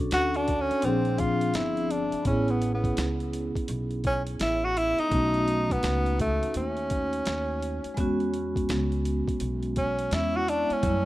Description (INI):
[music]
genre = hip hop, jazz-hop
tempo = 84 BPM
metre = 4/4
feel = swing 64% on 16ths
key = unclear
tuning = A4 = 440 Hz
[part]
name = vibraphone with soft mallets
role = accompaniment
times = 0.0-11.1 s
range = E#3 to A4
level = -29 LUFS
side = equal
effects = none
[part]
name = upright bass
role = bass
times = 0.0-11.1 s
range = G1 to F#2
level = -31 LUFS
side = equal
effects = none
[part]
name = mellow tenor saxophone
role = melody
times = 0.1-11.1 s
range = A3 to F#4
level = -27 LUFS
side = equal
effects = analog delay
[part]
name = boom bap sampler-style drum kit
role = drums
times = 0.1-11.0 s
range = hi-hat, kick drum, snare drum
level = -32 LUFS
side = equal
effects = none
[sound]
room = small room reverb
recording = rough home demo mix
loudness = -24 LUFS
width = side -16 dB against mid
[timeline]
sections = 0.0-11.1 A section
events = tenor saxophone solo 0.0-11.1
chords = 0.0 Bm7 (rootless); 0.8 A#9; 2.3 Amaj9; 5.1 B9; 8.0 E69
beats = 0.12 0.83 1.55 | 2.26 2.98 3.69 4.41 | 5.12 5.83 6.55 7.26 | 7.98 8.69 9.40 10.12 | 10.83